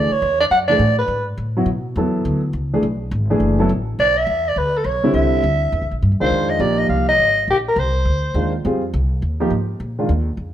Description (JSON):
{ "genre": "modal jazz", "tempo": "207 BPM", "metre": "4/4", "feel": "swing 62% on 8ths", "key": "B dorian, F dorian from 6.3 s", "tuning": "A4 = 440 Hz", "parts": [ { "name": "growling soprano saxophone", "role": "melody", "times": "0.0-1.3, 4.0-8.5 s", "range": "G4 to F#5", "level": "-17 LUFS", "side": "equal", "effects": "none" }, { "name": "warm baby grand piano", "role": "accompaniment", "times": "0.0-10.1 s", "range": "D3 to A4", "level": "-20 LUFS", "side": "equal", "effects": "none" }, { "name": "upright bass", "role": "bass", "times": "0.0-10.5 s", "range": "F#1 to B2", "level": "-21 LUFS", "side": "equal", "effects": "none" } ], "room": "moderate large studio reverb, RT60 1.2 s", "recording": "none", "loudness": "-16 LUFS", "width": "side -11 dB against mid", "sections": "0.0-6.3 A section; 6.3-10.5 B section", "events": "none", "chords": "0.0 Bm7; 5.2 C; 6.3 F9sus4", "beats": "0.22 | 0.51 0.80 1.09 1.38 | 1.67 1.96 2.25 2.54 | 2.83 3.12 3.41 3.70 | 3.99 4.28 4.57 4.86 | 5.15 5.44 5.73 6.02 | 6.31 6.60 6.89 7.18 | 7.47 7.77 8.06 8.35 | 8.64 8.93 9.22 9.51 | 9.80 10.09 10.38" }